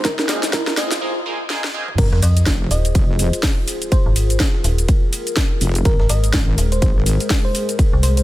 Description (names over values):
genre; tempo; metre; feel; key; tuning
bass house; 124 BPM; 4/4; swing 58% on 16ths; F minor; A4 = 440 Hz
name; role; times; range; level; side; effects
bell-like FM electric piano; melody; 0.0-8.2 s; Bb4 to Eb5; -28 LUFS; right 1 dB; chorus, tremolo, cassette tape, digital delay
dark analog pad; sustained chords; 0.0-8.2 s; Ab3 to C5; -27 LUFS; left 2 dB; chorus, sidechain pumping
wobble bass; bass; 0.0-7.2 s; F1 to Ab1; -21 LUFS; equal; chorus, tube saturation, sidechain pumping, high-pass filter
electronic kick drum; drums; 0.0-7.9 s; none; -17 LUFS; equal; none
garage drum kit; drums; 0.0-8.2 s; crash cymbal, hi-hat, shaker, snare drum, toms; -23 LUFS; equal; overdrive
riser and sub drop; sound effects; 0.0-3.9 s; none; -27 LUFS; equal; none
band-passed chord stab; stabs; 0.3-1.9 s; Bb3 to Ab4; -27 LUFS; right 2 dB; phaser, sidechain pumping, digital delay
breakbeat sampler-style drum kit; drums; 2.0-8.2 s; hi-hat, ride cymbal, snare drum; -35 LUFS; right 3 dB; sidechain pumping on cymbals, high-pass filter on cymbals, high-pass filter on snare, sidechain pumping on hats, high-pass filter on hats
metallic FM bass; bass; 2.1-8.2 s; Eb1 to F2; -16 LUFS; equal; tube saturation, sidechain pumping
room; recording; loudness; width
little or no reverb; high-pass filter; -15 LUFS; side -16 dB against mid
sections
0.0-2.0 A section; 2.0-8.2 B section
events
build-up 0.0-2.0; drum fill 0.0-1.0, 1.5-2.0; riser 0.0-1.0; filter sweep on synth stab 0.0-2.0; break 1.0-2.0; drop 2.0-8.2; impact 2.0-3.9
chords
0.0 Abadd9; 2.0 Fm; 5.9 Abadd9